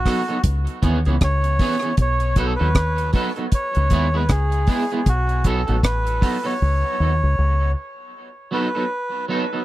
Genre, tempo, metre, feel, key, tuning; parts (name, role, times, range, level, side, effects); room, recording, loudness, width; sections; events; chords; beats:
dub reggae; 78 BPM; 4/4; swing 59% on 16ths; A4 = 439 Hz
melodica; melody; 0.0-9.3 s; F#4 to C#5; -24 LUFS; right 1 dB; tape echo
deep dub fingered electric bass; bass; 0.0-7.7 s; A1 to D#2; -20 LUFS; equal
electric guitar at the edge of break-up; accompaniment; 0.1-9.6 s; E3 to A4; -25 LUFS; right 2 dB; lush chorus, tape echo
deep reggae drum kit; drums; 0.1-6.4 s; hi-hat, kick drum, rim click; -19 LUFS; equal
little or no reverb; dry, close 1970s-style studio recording; -18 LUFS; side -16 dB against mid
0.0-8.1 A section; 8.1-9.6 B section
drums muted 6.6-8.1
0.4 C#m7; 2.0 B7; 3.5 C#m7; 5.1 B7; 6.6 C#sus2; 8.1 B7
0.45 1.21 | 1.98 2.75 3.52 4.29 | 5.06 5.83 6.60 7.36 | 8.13 8.90